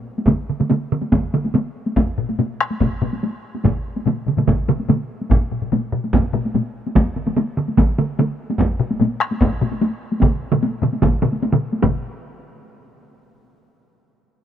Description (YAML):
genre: japanese traditional, taiko drum ensemble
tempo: 146 BPM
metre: 4/4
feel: straight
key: none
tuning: none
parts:
  - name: taiko ensemble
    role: percussion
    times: 0.2-12.0 s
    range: none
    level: -21 LUFS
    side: left 1 dB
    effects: none
  - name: taiko ensemble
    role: percussion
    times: 0.3-12.2 s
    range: none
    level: -20 LUFS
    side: right 4 dB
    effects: none
  - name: taiko ensemble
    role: percussion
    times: 0.3-12.0 s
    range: none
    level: -19 LUFS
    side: right 1 dB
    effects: none
  - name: taiko ensemble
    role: percussion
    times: 2.2-12.2 s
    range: none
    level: -22 LUFS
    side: left 4 dB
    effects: none
room: little or no reverb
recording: none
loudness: -17 LUFS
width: side -10 dB against mid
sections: 0.0-11.8 A section; 11.8-13.4 B section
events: speeding up 0.0-13.4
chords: none